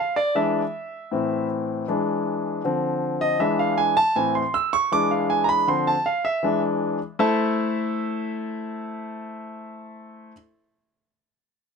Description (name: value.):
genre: latin.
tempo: 158 BPM.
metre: 4/4.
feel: straight.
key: A harmonic minor.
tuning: A4 = 439 Hz.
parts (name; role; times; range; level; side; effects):
warm concert grand piano; solo; 0.0-10.3 s; A2 to E6; -21 LUFS; equal; none.
room: light reverb.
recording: none.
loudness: -21 LUFS.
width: side -5 dB against mid.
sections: 0.0-7.2 A section; 7.2-10.2 B section.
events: grand piano solo 0.0-7.2.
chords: 0.4 E7; 1.1 Am; 1.9 E7; 2.6 Dm7; 3.4 E7; 4.2 Am; 4.9 E7; 5.7 Dm7; 6.4 E7; 7.2 Am.